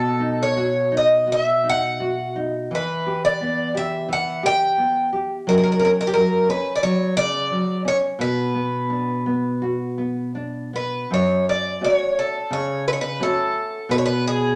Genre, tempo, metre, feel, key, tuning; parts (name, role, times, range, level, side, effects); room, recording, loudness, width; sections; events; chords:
fado; 86 BPM; 4/4; rubato; B harmonic minor, F# minor from 11.1 s; A4 = 439 Hz
picked twelve-string acoustic guitar; melody; 0.0-14.6 s; G4 to G5; -23 LUFS; equal
nylon-string guitar; accompaniment; 0.0-14.6 s; F#2 to G4; -26 LUFS; equal
wet club reverb, RT60 0.8 s; -21 LUFS; mono
0.0-11.1 A section; 11.1-14.6 B section
0.0 B; 2.7 Em; 5.5 F#5; 8.2 Bm; 11.1 F#m; 13.9 N.C.